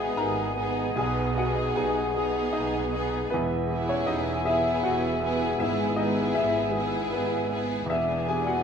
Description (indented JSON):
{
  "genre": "classical, romantic movement for piano and orchestra",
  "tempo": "78 BPM",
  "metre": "3/4",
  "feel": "rubato",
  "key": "unclear",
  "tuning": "A4 = 441 Hz",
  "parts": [
    { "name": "clear baby grand piano", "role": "melody", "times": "0.0-8.6 s", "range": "B1 to A#5", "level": "-28 LUFS", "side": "equal", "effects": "none" },
    { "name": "warm studio violin section", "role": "melody", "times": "0.0-8.6 s", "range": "G#4", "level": "-37 LUFS", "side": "left 3 dB", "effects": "none" },
    { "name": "dark clarinet", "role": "second line", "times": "0.0-8.6 s", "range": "E4 to G#4", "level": "-37 LUFS", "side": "left 4 dB", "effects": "none" },
    { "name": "flute section", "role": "second line", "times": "0.0-8.6 s", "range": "G#5", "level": "-36 LUFS", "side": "left 2 dB", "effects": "none" },
    { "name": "rich studio violin section", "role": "second line", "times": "0.0-8.6 s", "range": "D4 to E4", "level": "-38 LUFS", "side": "left 1 dB", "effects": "none" },
    { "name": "warm cor anglais", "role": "second line", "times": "0.0-8.6 s", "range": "D5 to E5", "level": "-37 LUFS", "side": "equal", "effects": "none" },
    { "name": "mellow bassoon", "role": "accompaniment", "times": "0.0-8.6 s", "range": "B3", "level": "-36 LUFS", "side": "right 2 dB", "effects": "none" },
    { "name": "rich studio viola section", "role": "accompaniment", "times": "0.0-8.6 s", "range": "B3", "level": "-35 LUFS", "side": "right 3 dB", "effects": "none" },
    { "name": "dark French horn section", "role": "sustained chords", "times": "0.0-8.6 s", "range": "B3 to G#4", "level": "-34 LUFS", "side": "left 4 dB", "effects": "none" },
    { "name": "rich studio cello section", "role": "bass", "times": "0.0-8.6 s", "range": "E2 to B2", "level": "-36 LUFS", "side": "right 3 dB", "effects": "none" },
    { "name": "rich studio double bass section", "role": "bass", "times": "0.0-8.6 s", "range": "E1 to B1", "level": "-36 LUFS", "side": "right 3 dB", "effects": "none" },
    { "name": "timpani", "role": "percussion", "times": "5.6-6.7 s", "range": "G#2", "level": "-42 LUFS", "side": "right 2 dB", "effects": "none" }
  ],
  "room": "wet scoring stage reverb, RT60 1.8 s",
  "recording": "minimal, uncompressed stereo recording",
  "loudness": "-24 LUFS",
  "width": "side -7 dB against mid",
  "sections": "0.0-8.6 A section",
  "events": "none",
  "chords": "0.0 G#m; 1.0 G#m/B; 3.3 E; 5.6 E/G#; 7.9 E7",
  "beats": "0.17 | 0.95 1.74 2.52 | 3.30 4.07 4.84 | 5.61 6.37 7.13 | 7.90"
}